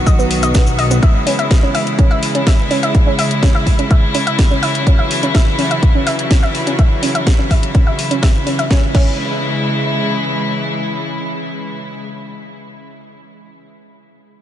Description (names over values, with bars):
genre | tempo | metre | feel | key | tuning
progressive house | 125 BPM | 4/4 | straight | C# minor | A4 = 440 Hz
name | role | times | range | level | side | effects
rich chamber string section | sustained chords | 0.0-12.1 s | C#3 to F#4 | -19 LUFS | left 1 dB | sidechain pumping
fat analog bass | bass | 0.0-1.0 s | B1 | -17 LUFS | equal | sidechain pumping
analog pluck | arpeggios | 0.1-9.1 s | B3 to E5 | -20 LUFS | right 1 dB | chorus, sidechain pumping, diffuse ambient delay
electronic kick drum | drums | 0.1-9.1 s | none | -12 LUFS | equal | none
house drum kit | drums | 0.1-9.1 s | crash cymbal, hi-hat, snare drum | -24 LUFS | left 1 dB | none
cabasa | percussion | 0.1-1.0 s | none | -30 LUFS | left 3 dB | none
room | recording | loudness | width
moderate huge ambient reverb, RT60 6.5 s | dreamy mix soaked in reverb, nothing above 11.0 kHz | -12 LUFS | side -11 dB against mid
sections
0.0-8.7 A section; 8.7-12.5 B section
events
filter sweep on synth pluck 0.0-8.7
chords
0.0 B; 1.0 C#m